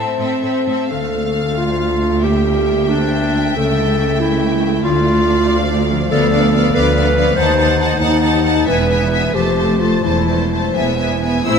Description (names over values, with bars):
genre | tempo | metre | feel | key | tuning
classical | 81-96 BPM (dotted quarters) | 6/8 | rubato | D minor | A4 = 439 Hz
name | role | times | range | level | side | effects
clear symphonic violin section | melody | 0.0-11.6 s | E5 to E6 | -24 LUFS | left 3 dB | none
clear symphonic violin section | second line | 0.0-11.6 s | A4 to F#5 | -24 LUFS | left 1 dB | none
rich symphonic viola section | accompaniment | 0.0-11.6 s | A3 to E4 | -22 LUFS | right 1 dB | none
concert harp | arpeggios | 0.0-11.6 s | A2 to E5 | -23 LUFS | left 9 dB | none
rich symphonic cello section | bass | 0.0-11.6 s | C#2 to E4 | -22 LUFS | right 3 dB | none
warm clarinet | second line | 0.2-10.7 s | C4 to B#4 | -18 LUFS | left 1 dB | none
clear studio double bass section | bass | 0.9-11.6 s | E1 to D#2 | -21 LUFS | right 3 dB | none
mellow French horn section | sustained chords | 11.5-11.6 s | C4 to E4 | -19 LUFS | left 4 dB | none
room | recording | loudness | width
wet concert hall reverb, RT60 2.4 s | none | -13 LUFS | side -6 dB against mid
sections
0.9-11.5 A section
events
none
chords
0.0 Am; 0.9 Dm; 2.2 Em7b5/D; 3.6 A7/C#; 4.9 Dm; 6.1 Bm7b5/D; 7.4 D#dim7; 8.7 E; 9.3 F; 10.0 Am/E; 10.7 E